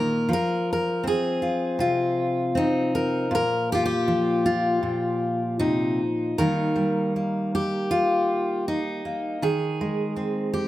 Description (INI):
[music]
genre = folk, solo fingerstyle acoustic guitar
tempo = 80 BPM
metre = 4/4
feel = straight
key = Eb major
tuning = A4 = 439 Hz
[part]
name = fingerpicked steel-string acoustic guitar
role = solo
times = 0.0-10.7 s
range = Bb2 to Bb4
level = -22 LUFS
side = equal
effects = none
[sound]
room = light reverb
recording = none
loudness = -22 LUFS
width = side -14 dB against mid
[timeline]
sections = 0.0-6.4 A section; 6.4-10.7 B section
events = none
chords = 0.3 Fm; 3.3 Bb5; 6.4 Eb; 9.4 Ab/Eb